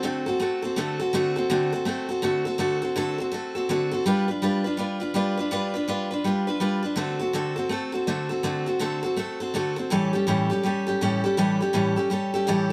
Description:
rock; 164 BPM; 4/4; swing 63% on 8ths; D mixolydian; A4 = 440 Hz
picked steel-string acoustic guitar; solo; 0.0-12.7 s; A2 to B4; -25 LUFS; equal
moderate stone room reverb, RT60 1.1 s; band playing live in one room; -25 LUFS; mono
0.0-12.7 A section
0.0 D7; 4.0 G7; 7.0 D7; 9.9 A7
0.04 0.40 0.77 | 1.13 1.50 1.86 2.23 | 2.59 2.96 3.32 3.68 | 4.05 4.41 4.78 5.14 | 5.51 5.87 6.24 6.61 | 6.97 7.34 7.70 8.07 | 8.44 8.80 9.17 9.54 | 9.90 10.27 10.63 11.00 | 11.37 11.73 12.10 12.46

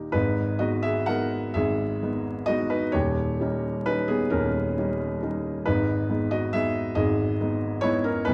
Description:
classical, romantic nocturne for solo piano; 42-46 BPM (dotted quarters); 12/8; rubato; G# minor; A4 = 440 Hz
felt-muted upright piano; solo; 0.0-8.3 s; D#1 to F#5; -26 LUFS; equal
moderate recital hall reverb, RT60 1.4 s; vinyl crackle; -26 LUFS; mono
0.1-8.3 A section
0.1 G#m; 2.9 D#7; 5.7 G#m
| 0.14 1.54 2.94 4.32 | 5.66 6.96 8.27

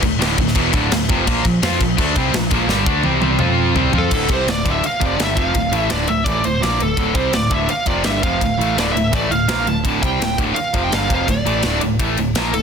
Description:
heavy metal; 168 BPM; 4/4; straight; D minor; A4 = 440 Hz
distorted electric guitar; riff; 0.0-12.6 s; D2 to F4; -21 LUFS; right 14 dB; overdrive
tight distorted guitar; riff; 0.0-12.6 s; D2 to F4; -22 LUFS; left 13 dB; distortion
picked electric bass; bass; 0.0-12.6 s; D1 to F2; -23 LUFS; left 1 dB
tight metal drum kit; drums; 0.0-12.6 s; crash cymbal, kick drum, ride cymbal, snare drum, toms; -21 LUFS; equal
high-gain lead guitar; melody; 4.0-12.6 s; A4 to A5; -21 LUFS; equal; distortion
light reverb; dense, heavily limited modern master; -15 LUFS; side -6 dB against mid
0.0-4.1 A section; 4.1-12.6 B section
drum fill 2.7-4.1
0.0 Dm; 1.3 Bb5; 3.4 F5; 3.8 Fadd9/C; 4.1 Dm
0.20 0.56 0.91 | 1.27 1.62 1.98 2.34 | 2.69 3.05 3.40 3.76 | 4.12 4.47 4.83 5.19 | 5.54 5.90 6.26 6.62 | 6.97 7.33 7.69 8.05 | 8.41 8.77 9.12 9.48 | 9.84 10.20 10.56 10.92 | 11.28 11.63 11.99 12.35

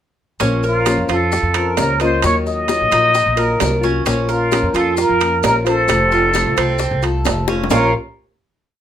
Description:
latin, Cuban son and guajira; 131 BPM; 4/4; straight; Bb harmonic minor; A4 = 439 Hz
nylon-string guitar; accompaniment; 0.4-7.9 s; Bb2 to C5; -21 LUFS; left 4 dB
Cuban tres; arpeggios; 0.4-7.9 s; Bb3 to Eb5; -20 LUFS; right 4 dB
upright bass; bass; 0.4-7.9 s; F1 to F2; -21 LUFS; equal
bongos; percussion; 0.4-7.8 s; -24 LUFS; left 6 dB
maracas; percussion; 0.4-7.8 s; -31 LUFS; left 2 dB
timbales; percussion; 0.4-7.8 s; -23 LUFS; right 8 dB
trumpet with plunger mute; melody; 0.7-7.9 s; F4 to Eb5; -17 LUFS; left 1 dB
moderate studio ambience, RT60 0.5 s; -14 LUFS; side -10 dB against mid
0.4-7.7 verse; 7.7-8.8 final chord
drum fill 7.5
0.4 Bbmadd9; 2.2 Ebmadd9; 4.1 Bbm; 5.9 F; 7.7 Bbm
| 0.40 0.86 1.32 1.78 | 2.23 2.69 3.15 3.61 | 4.07 4.52 4.98 5.44 | 5.89 6.35 6.81 7.26 | 7.72

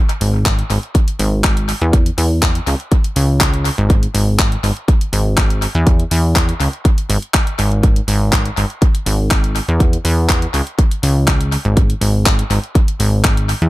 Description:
piano house; 122 BPM; 4/4; straight; A4 = 440 Hz
house drum kit; drums; 0.1-13.7 s; handclaps, hi-hat; -20 LUFS; left 1 dB; analog delay
plucky analog bass; bass; 0.2-13.7 s; G#1 to E2; -15 LUFS; equal; sidechain pumping
electronic kick drum; drums; 0.5-13.3 s; -14 LUFS; equal
little or no reverb; echo-heavy mix; -13 LUFS; side -17 dB against mid
0.0-13.7 A section
0.46 0.95 1.44 | 1.93 2.42 2.92 3.41 | 3.90 4.39 4.88 5.38 | 5.87 6.36 6.85 7.34 | 7.83 8.33 8.82 9.31 | 9.80 10.29 10.79 11.28 | 11.77 12.26 12.75 13.24

